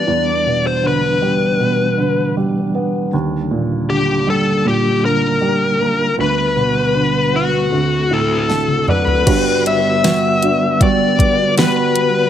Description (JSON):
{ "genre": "pop ballad", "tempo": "78 BPM", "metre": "4/4", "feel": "straight", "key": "G major", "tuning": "A4 = 436 Hz", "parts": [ { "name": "bluesy overdriven lead guitar", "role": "melody", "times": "0.0-12.3 s", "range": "F#4 to E5", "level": "-16 LUFS", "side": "left 3 dB", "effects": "distortion" }, { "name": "felt-muted upright piano", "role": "accompaniment", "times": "0.0-12.3 s", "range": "G1 to A5", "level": "-19 LUFS", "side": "right 3 dB", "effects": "none" }, { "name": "mellow tonewheel organ", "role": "sustained chords", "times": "0.0-12.3 s", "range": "D3 to B4", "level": "-22 LUFS", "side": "equal", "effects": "chorus vibrato, fast rotary speaker" }, { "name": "smooth R&B drum kit", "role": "drums", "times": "8.5-12.1 s", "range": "crash cymbal, hi-hat, kick drum, snare drum, toms", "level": "-18 LUFS", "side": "equal", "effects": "none" }, { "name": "nylon-string guitar", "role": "arpeggios", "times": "9.3-12.3 s", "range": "G3 to F#4", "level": "-20 LUFS", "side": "right 4 dB", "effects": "digital delay" } ], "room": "light reverb, digital ambience", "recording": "none", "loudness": "-13 LUFS", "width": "side -10 dB against mid", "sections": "0.0-9.3 A section; 9.3-12.3 B section", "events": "felt piano fill 8.1-9.3; drum fill 8.5-9.3", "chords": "0.1 Em7; 3.1 Ebmaj7; 6.2 G/D; 7.7 D7; 9.3 Gmaj7" }